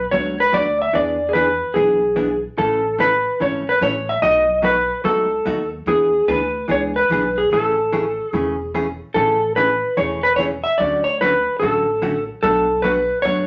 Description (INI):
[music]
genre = country, western swing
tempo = 146 BPM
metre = 4/4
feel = swing 64% on 8ths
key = A major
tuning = A4 = 441 Hz
[part]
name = clean lap steel guitar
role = melody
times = 0.0-13.5 s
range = G#4 to E5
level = -19 LUFS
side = equal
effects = none
[part]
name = upright bass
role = bass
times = 0.0-13.5 s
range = E1 to F#2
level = -34 LUFS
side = equal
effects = none
[part]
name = vintage hollow-body jazz guitar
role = accompaniment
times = 0.1-13.5 s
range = B2 to A4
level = -27 LUFS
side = equal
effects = none
[sound]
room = wet studio reverb, RT60 0.6 s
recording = nothing above 7.6 kHz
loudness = -19 LUFS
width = mono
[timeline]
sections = 0.0-9.1 A section; 9.1-13.5 A section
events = none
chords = 0.0 Bm7; 0.9 E7; 2.6 A; 4.2 B7; 5.9 E7; 7.5 Amaj7; 10.8 Dmaj7; 12.4 Bm7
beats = 0.12 0.54 | 0.95 1.36 1.77 2.18 | 2.59 3.00 3.41 3.82 | 4.23 4.64 5.05 5.46 | 5.87 6.28 6.69 7.10 | 7.51 7.92 8.33 8.74 | 9.15 9.56 9.97 10.38 | 10.79 11.20 11.61 12.02 | 12.43 12.84 13.25